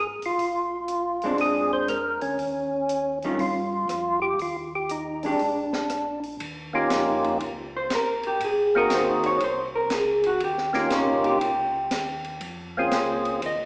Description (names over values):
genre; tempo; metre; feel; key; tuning
soul jazz organ trio; 120 BPM; 4/4; swing 67% on 8ths; Eb mixolydian; A4 = 439 Hz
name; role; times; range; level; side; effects
percussive tonewheel organ; melody; 0.0-13.4 s; Bb3 to C5; -24 LUFS; equal; slow rotary speaker, overdrive
mellow tonewheel organ; bass; 0.0-13.7 s; F1 to G2; -42 LUFS; equal; slow rotary speaker
compact cocktail drum kit; drums; 0.2-13.6 s; hi-hat, ride cymbal, rim click, snare drum; -33 LUFS; equal; none
vintage hollow-body jazz guitar; accompaniment; 1.2-13.7 s; Eb3 to Eb5; -24 LUFS; equal; none
room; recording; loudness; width
wet recital hall reverb, RT60 1.6 s; recorded in a church or concert hall, small speaker sound; -22 LUFS; side -30 dB against mid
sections
0.0-6.4 A section; 6.4-13.7 B section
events
hollow-body jazz guitar solo 6.4-13.7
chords
0.4 Bb9; 2.4 Eb9; 5.4 Bb; 6.4 Eb9; 8.4 Ab9; 10.4 Eb9; 12.4 Bbm7